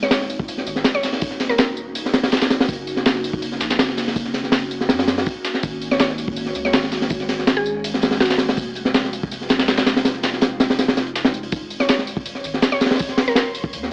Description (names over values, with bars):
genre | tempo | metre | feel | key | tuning
drum and bass, jungle | 163 BPM | 4/4 | straight | unclear | A4 = 440 Hz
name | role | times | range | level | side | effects
mallet-like synth pluck | melody | 0.0-1.6, 5.9-8.6, 11.8-13.4 s | Gb4 to Db5 | -28 LUFS | equal | chorus, cassette tape, dub echo
ethereal airy pad | sustained chords | 0.0-11.5 s | Ab3 to Gb4 | -31 LUFS | equal | ensemble chorus, built-in reverb, phaser
soft dub sub bass | bass | 0.0-13.9 s | Eb1 to Gb2 | -39 LUFS | equal | none
crunchy breakbeat drum kit | drums | 0.0-13.9 s | hi-hat, kick drum, snare drum | -22 LUFS | equal | none
dusty soul sampler-style drum kit | drums | 0.1-13.8 s | hi-hat, snare drum, tambourine | -28 LUFS | equal | high-pass filter on perc, high-pass filter on snare, high-pass filter on hats
backwards swelling texture | texture | 12.3-13.9 s | Db5 to C6 | -37 LUFS | equal | built-in reverb
room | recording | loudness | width
light reverb, studio reverb | dry, gritty hardware recording, transformer saturation, vinyl crackle, AM radio sound | -20 LUFS | mono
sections
0.0-11.5 A section; 11.5-13.9 A section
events
drop 0.0-11.5, 11.5-13.9; kick drops out 10.8-11.5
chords
0.0 Ebm7; 2.7 Gb6; 5.6 Ab9sus4; 8.6 Fm7; 11.5 Bbmadd9/Eb (rootless)